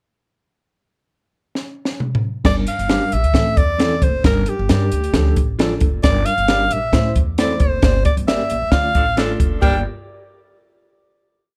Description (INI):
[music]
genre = uptempo 1960s-style soul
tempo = 134 BPM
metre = 4/4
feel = straight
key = G dorian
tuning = A4 = 440 Hz
[part]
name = compact cocktail drum kit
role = drums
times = 1.6-9.7 s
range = crash cymbal, hi-hat, kick drum, snare drum, toms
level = -20 LUFS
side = equal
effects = none
[part]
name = reed electric piano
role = accompaniment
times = 2.4-9.8 s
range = E3 to D5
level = -28 LUFS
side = equal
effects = fast tremolo
[part]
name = upright bass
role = bass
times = 2.4-9.8 s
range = F#1 to D3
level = -24 LUFS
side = equal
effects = none
[part]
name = warm alto saxophone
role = melody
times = 2.5-9.8 s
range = G4 to G5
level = -23 LUFS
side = equal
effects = none
[part]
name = mellow electric guitar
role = stabs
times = 2.9-9.8 s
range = C4 to D5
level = -30 LUFS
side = equal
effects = spring reverb, slapback echo
[part]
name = clear saxophone section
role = second line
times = 9.0-9.8 s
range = F3 to Bb4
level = -29 LUFS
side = equal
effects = none
[sound]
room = light reverb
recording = none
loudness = -17 LUFS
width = mono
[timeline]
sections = 0.7-2.4 pickup bar; 2.4-9.6 verse; 9.6-11.4 final chord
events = drum fill 1.5-2.4; band accent 7.8-9.6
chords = 0.7 N.C.; 2.4 Gm; 3.3 Am; 4.2 Gm; 5.1 Dm; 6.0 Gm; 6.9 Am; 7.8 Gm; 8.7 Dm; 9.6 Gm